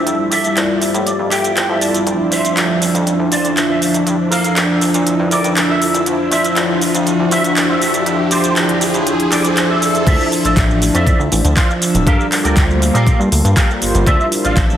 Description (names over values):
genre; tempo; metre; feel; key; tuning
nu-disco, nu disco; 120 BPM; 4/4; straight; D minor; A4 = 440 Hz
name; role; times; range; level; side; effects
electric guitar with an envelope filter; riff; 0.0-14.6 s; F4 to A5; -20 LUFS; right 1 dB; ensemble chorus, low-pass filter, digital delay
chorused synth bass; bass; 0.0-14.8 s; D1 to Bb2; -19 LUFS; equal; high-pass filter
riser; sound effects; 0.0-10.1 s; none; -25 LUFS; right 1 dB; none
warm analog pad; accompaniment; 0.1-14.8 s; F3 to E6; -16 LUFS; equal; chorus, digital delay
pop drum kit; drums; 0.1-14.8 s; crash cymbal, handclaps, hi-hat, shaker; -19 LUFS; equal; studio reverb
electronic kick drum; drums; 10.1-14.7 s; none; -14 LUFS; equal; studio reverb
room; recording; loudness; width
wet lush hall reverb, RT60 1.6 s; heavily compressed radio sound, multiband compression; -12 LUFS; side -10 dB against mid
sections
0.0-10.1 A section; 10.1-14.8 B section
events
build-up 0.0-10.1; riser 0.0-10.1; clean electric guitar fill 0.6-2.1; drop 10.1-14.8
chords
0.0 Fmaj9; 2.1 Dm9; 4.1 Gm9; 6.1 Dm9; 7.8 Fmaj9; 10.1 Dm9; 12.1 Gm9; 14.1 Dm9